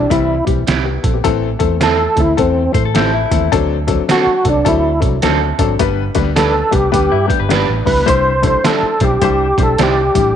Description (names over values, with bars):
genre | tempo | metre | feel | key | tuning
uptempo 1960s-style soul | 105 BPM | 4/4 | swing 63% on 8ths | C major | A4 = 440 Hz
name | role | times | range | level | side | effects
tonewheel organ | melody | 0.0-10.4 s | C4 to C5 | -16 LUFS | right 1 dB | overdrive, chorus vibrato
dark upright piano | accompaniment | 0.0-10.3 s | E3 to C5 | -18 LUFS | left 12 dB | none
vintage muted fingered electric bass | bass | 0.0-10.3 s | G1 to A2 | -19 LUFS | right 2 dB | none
trip hop sampler-style drum kit | drums | 0.1-10.2 s | hi-hat, kick drum, snare drum | -19 LUFS | right 2 dB | overdrive
electric guitar through a small old amp | stabs | 0.7-9.9 s | C4 to C5 | -22 LUFS | right 14 dB | spring reverb
electric guitar through a small old amp | riff | 2.7-3.5, 7.1-8.0 s | E4 to C5 | -22 LUFS | left 12 dB | none
room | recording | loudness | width
light reverb | 1960s-style stereo with parts hard left and right | -12 LUFS | side -9 dB against mid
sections
0.0-10.4 A section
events
tonewheel organ solo 0.0-10.4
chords
0.0 C; 1.2 Am; 3.5 D7; 5.8 G; 8.1 Cadd9